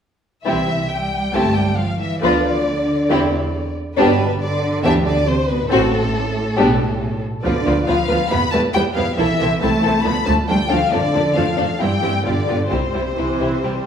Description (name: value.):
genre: quick classical-period movement for symphony orchestra.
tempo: 137 BPM.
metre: 4/4.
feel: straight.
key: C major.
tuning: A4 = 440 Hz.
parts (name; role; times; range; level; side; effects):
rich chamber violin section; melody; 0.4-13.9 s; A4 to B5; -22 LUFS; left 4 dB; none.
warm chamber cello section; bass; 0.4-13.9 s; A2 to B3; -22 LUFS; right 2 dB; none.
rich chamber violin section; second line; 0.5-13.7 s; C4 to B4; -21 LUFS; left 2 dB; none.
rich chamber viola section; accompaniment; 0.5-13.9 s; E3 to C4; -23 LUFS; right 1 dB; none.
rich symphonic double bass section; bass; 0.5-13.7 s; G1 to G2; -24 LUFS; right 2 dB; none.
room: wet recital hall reverb, RT60 1.4 s.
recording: recorded in a church or concert hall.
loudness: -16 LUFS.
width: side -8 dB against mid.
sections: 0.4-13.9 A section.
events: none.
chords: 0.4 C; 2.2 Bdim/D; 3.1 C/E; 4.0 G; 5.7 F#dim/A; 6.6 G/B; 7.4 Bdim/D; 8.3 Em; 9.2 Am/C; 10.1 Dm; 10.9 Dm/F; 11.8 C/G; 12.3 G; 12.7 C.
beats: | 0.45 0.89 1.33 1.77 | 2.22 2.66 3.10 3.54 | 3.98 4.41 4.84 5.28 | 5.71 6.14 6.58 7.01 | 7.45 7.88 8.31 8.74 | 9.18 9.62 10.05 10.49 | 10.93 11.37 11.81 12.26 | 12.71 13.17 13.63.